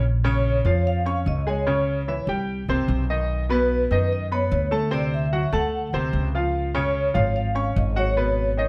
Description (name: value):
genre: Afro-Cuban jazz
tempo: 148 BPM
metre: 4/4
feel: straight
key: unclear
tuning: A4 = 440 Hz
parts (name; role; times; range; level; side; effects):
- upright bass; bass; 0.0-8.7 s; Ab1 to F#2; -26 LUFS; equal; none
- clear baby grand piano; accompaniment; 0.2-8.7 s; B2 to Db6; -28 LUFS; equal; none
- vibraphone with medium mallets; melody; 0.3-8.7 s; B4 to F#5; -28 LUFS; equal; none
room: moderate club reverb, RT60 0.7 s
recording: heard from further back in the room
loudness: -23 LUFS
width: mono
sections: 0.1-8.7 A section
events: none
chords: 0.1 Bbm7; 1.7 Dbm; 2.5 C5; 3.3 B; 4.9 D9; 6.5 Db; 8.2 Abm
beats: | 0.05 0.46 0.86 1.27 | 1.68 2.08 2.49 2.89 | 3.30 3.70 4.11 4.51 | 4.92 5.33 5.73 6.14 | 6.54 6.95 7.35 7.76 | 8.17 8.57